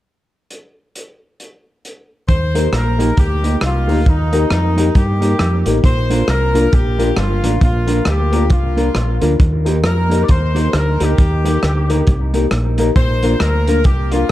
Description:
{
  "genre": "ska",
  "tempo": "135 BPM",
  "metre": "4/4",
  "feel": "swing 60% on 8ths",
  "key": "Eb major",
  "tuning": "A4 = 440 Hz",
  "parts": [
    { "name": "crunchy breakbeat drum kit", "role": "drums", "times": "0.5-14.3 s", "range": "hi-hat, kick drum, rim click", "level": "-17 LUFS", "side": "equal", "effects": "none" },
    { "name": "clear horn section", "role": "melody", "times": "2.3-14.3 s", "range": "Eb4 to D5", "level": "-22 LUFS", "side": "left 1 dB", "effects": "analog delay, plate reverb" },
    { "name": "fingered electric bass", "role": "bass", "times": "2.3-14.3 s", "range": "G1 to G2", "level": "-16 LUFS", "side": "equal", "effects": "none" },
    { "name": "mellow electric guitar", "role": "accompaniment", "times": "2.5-14.2 s", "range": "Bb3 to Bb4", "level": "-22 LUFS", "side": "right 3 dB", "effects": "analog delay" },
    { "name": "dark upright piano", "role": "stabs", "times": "2.5-14.2 s", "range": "Bb3 to Bb4", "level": "-22 LUFS", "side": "left 5 dB", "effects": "analog delay" }
  ],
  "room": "light reverb",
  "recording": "dark, warm production",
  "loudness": "-13 LUFS",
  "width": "side -14 dB against mid",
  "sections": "0.5-2.3 A section; 2.3-14.3 B section",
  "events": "none",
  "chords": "0.5 N.C.; 2.3 Eb; 5.8 Bb; 9.4 Eb; 13.0 Bb",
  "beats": "| 0.50 0.95 1.39 1.84 | 2.28 2.73 3.17 3.62 | 4.06 4.50 4.95 5.39 | 5.84 6.28 6.73 7.17 | 7.62 8.06 8.51 8.95 | 9.40 9.84 10.29 10.73 | 11.18 11.63 12.07 12.52 | 12.96 13.41 13.85 14.30"
}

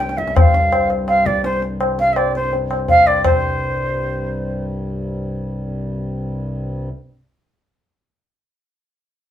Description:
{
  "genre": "indian classical, Hindustani",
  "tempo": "167 BPM",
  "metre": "4/4",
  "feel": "straight",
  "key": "unclear",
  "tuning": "A4 = 437 Hz",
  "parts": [
    { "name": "breathy bansuri", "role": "melody", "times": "0.0-4.6 s", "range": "C5 to G5", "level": "-17 LUFS", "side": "right 1 dB", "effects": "none" },
    { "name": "pedal harmonium", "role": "drone", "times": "0.0-6.9 s", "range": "C2 to G2", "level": "-24 LUFS", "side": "left 1 dB", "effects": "none" },
    { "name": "tabla", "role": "percussion", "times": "0.0-3.4 s", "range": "none", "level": "-18 LUFS", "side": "left 2 dB", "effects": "none" }
  ],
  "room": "wet small room ambience, RT60 0.5 s",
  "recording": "band playing live in one room",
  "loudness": "-16 LUFS",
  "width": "side -10 dB against mid",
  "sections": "0.0-3.2 A section; 3.2-6.1 B section",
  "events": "none",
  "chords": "none",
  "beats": "| 0.36 0.72 1.08 1.44 | 1.80 2.17 2.53 2.89 | 3.25 3.60 3.96 4.32 | 4.68 5.04 5.39 5.75"
}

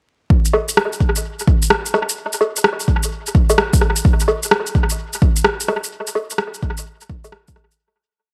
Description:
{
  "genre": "future garage",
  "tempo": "128 BPM",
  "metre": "4/4",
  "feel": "swing 65% on 16ths",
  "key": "none",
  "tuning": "none",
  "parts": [
    { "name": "electronic kick drum", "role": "drums", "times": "0.3-7.5 s", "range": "none", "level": "-18 LUFS", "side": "equal", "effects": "overdrive, studio reverb" },
    { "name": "electronic shaker, woodblock and rim click", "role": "drums", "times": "0.5-7.8 s", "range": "none", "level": "-20 LUFS", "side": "equal", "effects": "overdrive, studio reverb, dub echo" }
  ],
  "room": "light reverb, digital ambience",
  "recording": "echo-heavy mix, vinyl crackle",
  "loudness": "-18 LUFS",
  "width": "mono",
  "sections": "0.3-7.8 groove",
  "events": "fade-out 5.3-7.8",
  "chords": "none",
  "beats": "| 0.30 0.77 1.24 1.71 | 2.17 2.64 3.11 3.58 | 4.05 4.52 4.99 5.46 | 5.92 6.39 6.86 7.33"
}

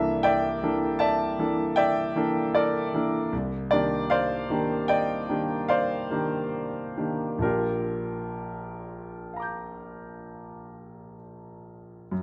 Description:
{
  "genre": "classical, impressionist solo piano",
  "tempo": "62-81 BPM",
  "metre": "5/4",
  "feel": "rubato",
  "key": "Bb major",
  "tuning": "A4 = 440 Hz",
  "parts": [
    { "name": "clear concert grand piano", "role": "solo", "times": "0.0-12.2 s", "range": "Bb1 to G6", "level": "-28 LUFS", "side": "equal", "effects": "none" }
  ],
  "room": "moderate recital hall reverb, RT60 1.9 s",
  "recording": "close, detailed microphones",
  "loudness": "-27 LUFS",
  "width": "mono",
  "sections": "0.0-12.1 A section",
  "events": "none",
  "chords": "0.0 C13; 3.3 Cm11; 7.4 Bb6",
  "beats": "0.24 0.99 1.76 2.54 | 3.32 4.11 4.89 5.68 6.53 | 7.44 8.39 9.33 10.27 11.20 | 12.11"
}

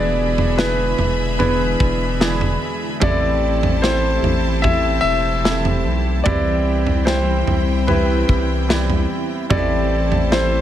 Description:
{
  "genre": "pop ballad",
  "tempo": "74 BPM",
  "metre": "4/4",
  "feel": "straight",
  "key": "unclear",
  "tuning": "A4 = 443 Hz",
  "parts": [
    { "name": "warm concert grand piano", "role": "melody", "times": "0.0-10.6 s", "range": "B4 to E5", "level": "-22 LUFS", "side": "left 2 dB", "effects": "none" },
    { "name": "rich symphonic violin section", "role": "second line", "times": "0.0-10.6 s", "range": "C4 to B5", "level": "-28 LUFS", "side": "left 1 dB", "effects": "ping-pong delay" },
    { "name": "clear concert grand piano", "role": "accompaniment", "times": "0.0-10.6 s", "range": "A2 to G5", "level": "-24 LUFS", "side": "right 4 dB", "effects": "none" },
    { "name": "airy breathy pad", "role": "sustained chords", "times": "0.1-10.6 s", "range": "D3 to G4", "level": "-28 LUFS", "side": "equal", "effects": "chorus, phaser" },
    { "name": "picked steel-string acoustic guitar", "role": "arpeggios", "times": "0.0-10.6 s", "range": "E2 to E4", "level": "-29 LUFS", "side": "left 4 dB", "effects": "none" },
    { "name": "saturated sub bass", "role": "bass", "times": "0.0-10.6 s", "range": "E1 to C2", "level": "-21 LUFS", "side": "equal", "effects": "none" },
    { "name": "modern studio drum kit", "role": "drums", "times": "0.4-10.5 s", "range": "kick drum, snare drum, toms", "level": "-21 LUFS", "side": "right 1 dB", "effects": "none" }
  ],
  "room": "light reverb, studio reverb",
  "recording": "none",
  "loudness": "-16 LUFS",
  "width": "side -11 dB against mid",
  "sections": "0.0-10.6 A section",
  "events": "none",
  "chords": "0.0 E7; 3.0 Am7; 6.3 Cmaj7; 9.5 Am7",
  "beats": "0.59 1.40 2.21 | 3.02 3.83 4.64 5.45 | 6.26 7.08 7.89 8.70 | 9.51 10.32"
}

